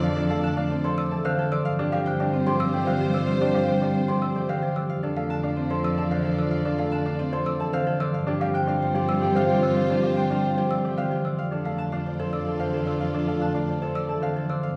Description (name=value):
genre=classical, minimalist pattern music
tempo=111 BPM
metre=3/4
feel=straight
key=F major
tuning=A4 = 440 Hz
part: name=Celtic harp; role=melody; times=0.0-14.8 s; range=G4 to A5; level=-33 LUFS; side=equal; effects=none
part: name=mellow French horn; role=second line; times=0.0-14.8 s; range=C4 to D4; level=-34 LUFS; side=equal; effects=none
part: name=marimba with medium mallets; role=accompaniment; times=0.0-14.7 s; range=D3 to C4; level=-30 LUFS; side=equal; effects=none
part: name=warm chamber violin section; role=sustained chords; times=0.0-14.8 s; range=F4 to D5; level=-36 LUFS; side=equal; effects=none
part: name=trough xylophone with soft rubber mallets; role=arpeggios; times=0.0-14.7 s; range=F5 to E6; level=-37 LUFS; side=equal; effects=none
part: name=warm baby grand piano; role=arpeggios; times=0.0-14.7 s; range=C4 to C5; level=-33 LUFS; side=equal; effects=none
part: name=warm cello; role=bass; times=0.0-14.8 s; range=F2 to G2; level=-34 LUFS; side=equal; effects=none
room=wet recital hall reverb, RT60 1.4 s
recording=heard from further back in the room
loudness=-25 LUFS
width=mono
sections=0.0-14.8 A section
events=none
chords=0.0 F6; 1.7 G7sus4; 4.9 F6; 8.1 G7sus4; 11.4 F6